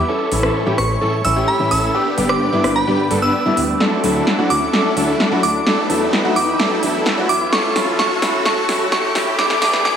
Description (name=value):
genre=EDM, festival progressive house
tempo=129 BPM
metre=4/4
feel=straight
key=unclear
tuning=A4 = 439 Hz
part: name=fingerpicked steel-string acoustic guitar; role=accompaniment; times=0.0-10.0 s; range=G2 to E4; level=-23 LUFS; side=left 1 dB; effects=none
part: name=supersaw pad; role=sustained chords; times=0.0-10.0 s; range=A4 to E6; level=-27 LUFS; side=right 1 dB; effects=none
part: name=clear concert grand piano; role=arpeggios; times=0.0-10.0 s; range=E4 to B4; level=-24 LUFS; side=left 1 dB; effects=low-pass filter, dub echo
part: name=big supersaw lead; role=riff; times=0.0-10.0 s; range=F#3 to B4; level=-23 LUFS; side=equal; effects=low-pass filter, dub echo
part: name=wide detuned saw bass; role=bass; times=0.0-9.8 s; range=G1 to E2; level=-27 LUFS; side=equal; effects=chorus
part: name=riser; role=sound effects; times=0.0-10.0 s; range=none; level=-25 LUFS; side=equal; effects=none
part: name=big-room dance drum kit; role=drums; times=0.3-9.9 s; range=hi-hat, rim click, snare drum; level=-21 LUFS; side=equal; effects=overdrive
part: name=glassy synth bell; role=melody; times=0.8-10.0 s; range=B5 to E6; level=-20 LUFS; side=right 2 dB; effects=chorus, dub echo
room=moderate lush hall reverb, RT60 1.9 s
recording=high-pass filter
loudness=-14 LUFS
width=side -8 dB against mid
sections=0.0-10.0 A section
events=build-up 0.0-10.0; riser 0.0-10.0; filter sweep on grand piano 0.0-10.0; filter sweep 0.0-10.0; drum fill 3.8-10.0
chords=0.1 A; 1.9 G; 3.8 Dadd9; 5.7 Em; 7.5 A; 9.4 G